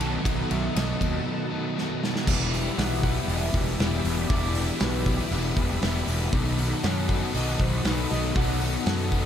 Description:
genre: rock, shoegaze and dream pop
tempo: 118 BPM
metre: 4/4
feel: straight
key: E minor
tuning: A4 = 441 Hz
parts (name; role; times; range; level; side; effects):
- electric guitar through a small old amp; melody; 0.0-9.3 s; B4 to A5; -37 LUFS; right 2 dB; analog chorus, diffuse ambient delay
- analog string pad; sustained chords; 0.0-9.3 s; G4 to B5; -37 LUFS; right 1 dB; ensemble chorus
- distorted electric guitar; riff; 0.0-9.3 s; B2 to E4; -32 LUFS; equal; distortion
- overdriven electric guitar; riff; 0.0-2.3 s; B2 to A4; -31 LUFS; right 8 dB; reverse reverb
- overdriven semi-hollow guitar; riff; 0.0-9.3 s; B2 to A4; -31 LUFS; left 8 dB; lush chorus
- fuzz picked electric bass; bass; 0.0-9.3 s; E1 to F#2; -27 LUFS; equal; overdrive
- loose indie drum kit; drums; 0.0-9.2 s; crash cymbal, hi-hat, kick drum, ride cymbal, snare drum; -28 LUFS; equal; none
room: light reverb, small room ambience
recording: none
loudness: -23 LUFS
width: side -9 dB against mid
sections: 0.0-2.3 A section; 2.3-9.3 B section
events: break 1.3-2.3; drum fill 1.8-2.3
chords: 0.0 B7; 2.3 Em7; 6.3 B7

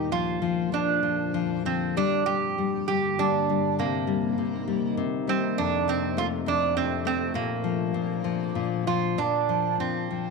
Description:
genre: children's music, lullaby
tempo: 99 BPM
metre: 3/4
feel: rubato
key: Bb major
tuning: A4 = 439 Hz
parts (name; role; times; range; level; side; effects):
- lap resonator guitar; melody; 0.0-10.3 s; Bb3 to G4; -27 LUFS; right 8 dB; none
- nylon-string guitar; accompaniment; 0.0-10.3 s; F2 to Eb4; -28 LUFS; left 12 dB; none
- deep dark ambient pad; sustained chords; 0.0-9.2 s; Eb2 to Eb4; -33 LUFS; equal; chorus, built-in reverb
room: moderate echo chamber reverb, RT60 1.7 s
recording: 1960s-style stereo with parts hard left and right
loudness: -24 LUFS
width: side -3 dB against mid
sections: 0.0-9.2 A section; 9.2-10.3 B section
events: none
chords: 0.1 Bb/F; 1.3 F; 2.0 Gm; 3.8 Cm7; 5.6 F; 7.3 Bb

